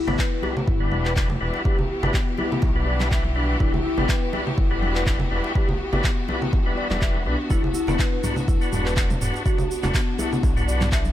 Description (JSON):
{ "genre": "afro house", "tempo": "123 BPM", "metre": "4/4", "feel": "swing 54% on 16ths", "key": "E minor", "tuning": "A4 = 440 Hz", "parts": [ { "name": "clear studio string section", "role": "sustained chords", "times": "0.0-11.1 s", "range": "E3 to G4", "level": "-32 LUFS", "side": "left 1 dB", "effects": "sidechain pumping" }, { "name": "marimba with medium mallets", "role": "arpeggios", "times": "0.1-11.0 s", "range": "B3 to E5", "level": "-29 LUFS", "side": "left 3 dB", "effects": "sidechain pumping, low-pass filter, ping-pong delay" }, { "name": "percussive tonewheel organ", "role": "stabs", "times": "0.1-11.0 s", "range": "G3 to B4", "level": "-29 LUFS", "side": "left 1 dB", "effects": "overdrive, fast rotary speaker, sidechain pumping, ping-pong delay" }, { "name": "smooth synth bass", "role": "bass", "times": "0.1-11.1 s", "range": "E1 to B1", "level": "-26 LUFS", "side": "equal", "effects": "sidechain pumping" }, { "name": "congas", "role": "percussion", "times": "0.1-11.1 s", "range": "none", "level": "-30 LUFS", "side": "right 2 dB", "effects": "none" }, { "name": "djembe", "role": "percussion", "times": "0.1-10.9 s", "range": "none", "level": "-34 LUFS", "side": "left 1 dB", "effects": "none" }, { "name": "afro-pop drum kit", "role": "drums", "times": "0.2-11.0 s", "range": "handclaps, toms", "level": "-30 LUFS", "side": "equal", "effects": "none" }, { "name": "electronic kick drum", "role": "drums", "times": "0.2-11.0 s", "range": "none", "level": "-22 LUFS", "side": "equal", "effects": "overdrive" }, { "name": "tube shaker", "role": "percussion", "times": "7.5-11.1 s", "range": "none", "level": "-38 LUFS", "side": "right 6 dB", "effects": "none" } ], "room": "small room ambience", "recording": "none", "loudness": "-20 LUFS", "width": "side -12 dB against mid", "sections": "0.0-11.1 A section", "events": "none", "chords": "0.0 Em7; 7.5 Bm/E" }